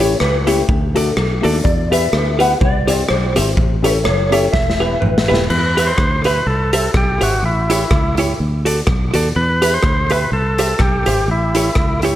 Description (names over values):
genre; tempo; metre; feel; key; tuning
ska; 125 BPM; 4/4; swing 56% on 8ths; E minor; A4 = 445 Hz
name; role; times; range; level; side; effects
mellow electric guitar; melody; 0.0-5.5 s; B4 to F#5; -20 LUFS; left 1 dB; ensemble chorus, tape echo
hollow-body jazz guitar; accompaniment; 0.0-12.2 s; E4 to E5; -20 LUFS; right 2 dB; none
dark upright piano; stabs; 0.0-5.4 s; A3 to C5; -22 LUFS; left 5 dB; tape echo
fingered electric bass; bass; 0.0-12.2 s; D#1 to E2; -19 LUFS; equal; none
raw garage drum kit; drums; 0.0-12.1 s; crash cymbal, hi-hat, kick drum, rim click, snare drum, toms; -19 LUFS; equal; tape echo
overdriven tonewheel organ; melody; 5.5-12.0 s; E4 to C5; -19 LUFS; equal; tape echo
room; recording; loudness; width
moderate spring reverb, RT60 1.5 s, small room ambience; none; -13 LUFS; side -13 dB against mid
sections
0.0-5.5 A section; 5.5-12.2 B section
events
clean electric guitar solo 0.0-5.5; drum fill 4.5-5.5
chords
0.0 A7; 0.7 D; 1.7 Em; 2.6 C; 3.6 A7; 4.5 Em; 6.5 C; 7.4 A7; 8.4 D; 9.4 Em; 10.3 C; 11.3 A7